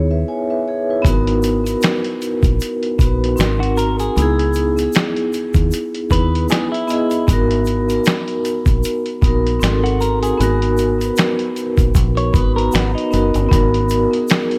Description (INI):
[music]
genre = lo-fi hip hop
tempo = 77 BPM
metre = 4/4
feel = swing 56% on 16ths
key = G# minor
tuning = A4 = 441 Hz
[part]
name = vibraphone with soft mallets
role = accompaniment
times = 0.0-14.6 s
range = B3 to G#5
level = -20 LUFS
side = equal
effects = cassette tape
[part]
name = deep dub fingered electric bass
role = bass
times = 0.0-14.1 s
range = F#1 to D#2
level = -21 LUFS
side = equal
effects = none
[part]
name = dusty soul sampler-style drum kit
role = drums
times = 1.0-14.6 s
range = finger snaps, hi-hat, kick drum, snare drum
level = -20 LUFS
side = equal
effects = none
[part]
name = egg shaker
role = percussion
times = 1.1-14.5 s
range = none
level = -40 LUFS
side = equal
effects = none
[part]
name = clean electric guitar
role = second line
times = 3.6-13.5 s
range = D#4 to C#5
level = -27 LUFS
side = equal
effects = analog delay
[sound]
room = light reverb, digital ambience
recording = none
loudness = -17 LUFS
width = mono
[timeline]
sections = 0.0-13.5 A section; 13.5-14.6 B section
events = none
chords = 0.0 C#m7; 1.0 G#m7; 3.4 G#7; 4.2 C#m7; 7.3 G#m7; 9.6 G#7; 10.4 G#m9; 13.5 G#m7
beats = 0.27 | 1.05 1.83 2.60 3.38 | 4.16 4.94 5.72 6.50 | 7.28 8.06 8.84 9.62 | 10.40 11.18 11.96 12.73 | 13.52 14.29